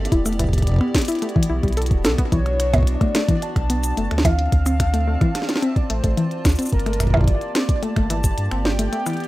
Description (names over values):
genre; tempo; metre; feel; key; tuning
IDM; 109 BPM; 4/4; straight; unclear; A4 = 442 Hz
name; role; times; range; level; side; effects
hollow soft pad; sustained chords; 0.0-9.3 s; Bb3 to A5; -30 LUFS; equal; chorus, sidechain pumping
warm sub bass; bass; 0.0-8.9 s; D1 to G2; -22 LUFS; equal; tube saturation
warbly dusty pluck; arpeggios; 0.1-9.1 s; E3 to A4; -24 LUFS; left 2 dB; chorus, digital delay
electronic kick drum; drums; 0.1-8.3 s; none; -19 LUFS; equal; overdrive, studio reverb
glitchy drum kit; drums; 0.1-9.3 s; finger snaps, hi-hat, percussion blips, shaker, snare drum; -25 LUFS; right 1 dB; overdrive, studio reverb
warm velvety synth lead; melody; 2.3-9.3 s; Bb4 to A5; -28 LUFS; equal; chorus, digital delay
room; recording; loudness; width
digital ambience; rough home demo mix; -17 LUFS; side -17 dB against mid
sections
0.0-9.3 A section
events
break 8.9-9.3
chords
0.1 Em9; 2.3 Bm9; 4.2 Dm7; 6.7 Gm9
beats
| 0.12 0.67 1.22 1.77 | 2.32 2.87 3.42 3.97 | 4.52 5.07 5.62 6.17 | 6.72 7.28 7.83 8.38 | 8.93